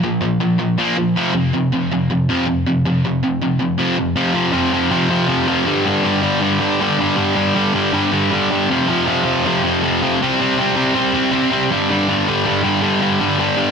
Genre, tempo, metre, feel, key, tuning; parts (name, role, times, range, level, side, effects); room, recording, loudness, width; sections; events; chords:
punk; 159 BPM; 4/4; straight; A4 = 440 Hz
distorted electric guitar; solo; 0.0-13.7 s; F2 to C4; -15 LUFS; equal; distortion, tape echo
moderate studio reverb, RT60 0.9 s; dense, heavily limited modern master; -15 LUFS; side -6 dB against mid
0.0-4.2 A section; 4.2-5.7 B section; 5.7-13.7 C section
0.0 Bb5; 1.2 F5; 5.7 G5; 8.7 F5; 10.2 C5; 11.7 G5